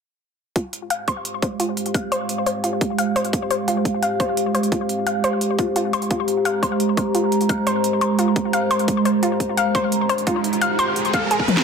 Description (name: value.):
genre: dark technical drum and bass.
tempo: 173 BPM.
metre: 4/4.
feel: straight.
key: F minor.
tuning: A4 = 443 Hz.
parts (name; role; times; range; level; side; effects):
dark analog pad; sustained chords; 1.3-11.6 s; Ab3 to Bb5; -21 LUFS; right 1 dB; chorus, phaser, sidechain pumping.
analog pluck; arpeggios; 0.6-11.4 s; F4 to F5; -23 LUFS; left 2 dB; chorus, sidechain pumping, ping-pong delay.
drum and bass drum kit; drums; 0.6-11.6 s; hi-hat, snare drum, toms; -26 LUFS; left 1 dB; none.
electronic kick drum; drums; 0.6-11.5 s; none; -23 LUFS; right 1 dB; overdrive, high-pass filter on kick.
riser; sound effects; 9.9-11.6 s; none; -27 LUFS; right 3 dB; none.
room: moderate plate reverb, RT60 1.0 s.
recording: dense, heavily limited modern master.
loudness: -18 LUFS.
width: side -6 dB against mid.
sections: 0.6-11.6 A section.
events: filter sweep on synth arpeggio sound 0.6-11.6; riser 9.9-11.6; drum fill 11.5.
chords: 0.6 Fmadd9.